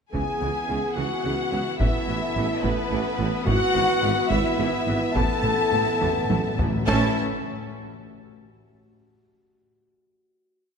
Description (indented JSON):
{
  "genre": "cinematic, epic orchestral film score",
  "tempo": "71 BPM (dotted quarters)",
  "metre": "6/8",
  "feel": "straight",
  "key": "A major",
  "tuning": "A4 = 440 Hz",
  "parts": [
    { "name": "rich studio violin section", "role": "melody", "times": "0.1-7.2 s", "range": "B4 to A5", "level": "-31 LUFS", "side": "left 3 dB", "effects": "none" },
    { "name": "warm symphonic violin section", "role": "second line", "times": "0.1-7.2 s", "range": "B4 to A5", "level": "-31 LUFS", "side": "left 3 dB", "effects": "none" },
    { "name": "rich chamber viola section", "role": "accompaniment", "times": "0.1-7.2 s", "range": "E3 to C#4", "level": "-34 LUFS", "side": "right 1 dB", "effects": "none" },
    { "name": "clear symphonic string section", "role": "sustained chords", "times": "0.1-7.2 s", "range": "B3 to E5", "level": "-34 LUFS", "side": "right 1 dB", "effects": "none" },
    { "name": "clear trombone section", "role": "sustained chords", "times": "0.1-7.1 s", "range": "E3 to C#4", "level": "-33 LUFS", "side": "right 3 dB", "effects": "none" },
    { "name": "dark French horn section", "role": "sustained chords", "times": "0.1-7.1 s", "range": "B3 to A4", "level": "-30 LUFS", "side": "left 5 dB", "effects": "none" },
    { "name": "dark trumpet", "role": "stabs", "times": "0.1-7.1 s", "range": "B3 to A4", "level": "-30 LUFS", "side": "right 1 dB", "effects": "none" },
    { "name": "dark tuba", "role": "bass", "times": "0.1-7.1 s", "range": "G#1 to C#2", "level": "-32 LUFS", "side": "right 3 dB", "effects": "none" },
    { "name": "rich studio double bass section", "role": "bass", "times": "0.1-7.2 s", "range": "G#1 to C#2", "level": "-33 LUFS", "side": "right 3 dB", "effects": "none" },
    { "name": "warm symphonic cello section", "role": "bass", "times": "0.1-7.2 s", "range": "G#2 to C#3", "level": "-32 LUFS", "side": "right 3 dB", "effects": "none" },
    { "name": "taiko ensemble", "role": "drums", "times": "0.1-8.0 s", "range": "none", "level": "-29 LUFS", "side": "equal", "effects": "none" },
    { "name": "timpani", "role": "percussion", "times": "5.2-7.1 s", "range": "A2", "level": "-31 LUFS", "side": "left 1 dB", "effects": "none" }
  ],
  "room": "wet concert hall reverb, RT60 2.3 s",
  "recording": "none",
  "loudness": "-21 LUFS",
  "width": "side -6 dB against mid",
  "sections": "0.1-6.9 theme; 6.9-8.6 final chord",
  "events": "timpani fill 5.2-6.9; drum fill 6.0-6.9",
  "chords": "0.1 C#m7; 1.8 Asus2; 3.5 E/G#; 5.2 Asus2; 6.9 A"
}